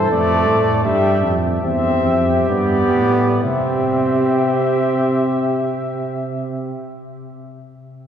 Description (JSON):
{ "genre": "classical, imitative canzona for brass ensemble", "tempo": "60-84 BPM", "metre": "3/4", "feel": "straight", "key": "C major", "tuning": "A4 = 439 Hz", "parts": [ { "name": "mellow trumpet", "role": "melody", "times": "0.0-6.8 s", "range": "D5 to E5", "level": "-22 LUFS", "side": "left 4 dB", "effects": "none" }, { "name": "mellow flugelhorn", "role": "second line", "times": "0.0-6.8 s", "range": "G4 to A4", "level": "-22 LUFS", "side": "right 3 dB", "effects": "none" }, { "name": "clear trombone", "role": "accompaniment", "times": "0.0-6.8 s", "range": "G3 to C4", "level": "-20 LUFS", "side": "equal", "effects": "none" }, { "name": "dark tuba", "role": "bass", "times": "0.0-6.8 s", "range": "E2 to C3", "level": "-22 LUFS", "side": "right 1 dB", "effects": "none" } ], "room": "wet cathedral reverb, RT60 4.9 s", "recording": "heard from further back in the room", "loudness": "-15 LUFS", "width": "side -8 dB against mid", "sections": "0.0-3.5 A section; 3.5-8.1 B section", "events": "slowing down 0.0-3.5", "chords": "0.1 Dm/F; 0.9 C; 2.5 G; 3.5 C" }